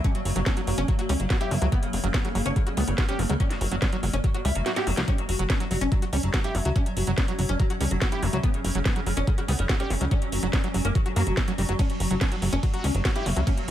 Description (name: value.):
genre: psychedelic trance.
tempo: 143 BPM.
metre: 4/4.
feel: straight.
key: F# major.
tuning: A4 = 440 Hz.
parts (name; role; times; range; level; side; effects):
oud; melody; 0.0-13.7 s; C#3 to F#4; -31 LUFS; left 1 dB; phaser, sidechain pumping, ping-pong delay.
swarming drone; sustained chords; 0.0-13.7 s; F#3 to C#4; -34 LUFS; equal; built-in reverb, vintage 12-bit sampler grit, sidechain pumping.
overdriven acid bass; riff; 0.0-13.5 s; F#3 to G4; -33 LUFS; moving between left 3 dB and right 5 dB; auto-pan, sidechain pumping, ping-pong delay.
electronic kick drum; drums; 0.0-13.6 s; none; -24 LUFS; equal; studio reverb.
garage drum kit; drums; 0.0-13.7 s; hi-hat, ride cymbal, snare drum; -32 LUFS; equal; studio reverb.
plucky analog bass; bass; 0.3-13.7 s; F#1 to F#2; -25 LUFS; equal; none.
room: little or no reverb.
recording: none.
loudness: -22 LUFS.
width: side -12 dB against mid.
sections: 0.0-13.7 A section.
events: kick drops out 4.7-5.1; drum fill 4.7-5.1.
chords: 0.0 F#5.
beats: | 0.04 0.46 0.88 1.30 | 1.72 2.14 2.56 2.98 | 3.40 3.82 4.24 4.66 | 5.08 5.50 5.92 6.34 | 6.76 7.18 7.60 8.02 | 8.44 8.86 9.27 9.69 | 10.11 10.53 10.95 11.37 | 11.79 12.21 12.63 13.05 | 13.47.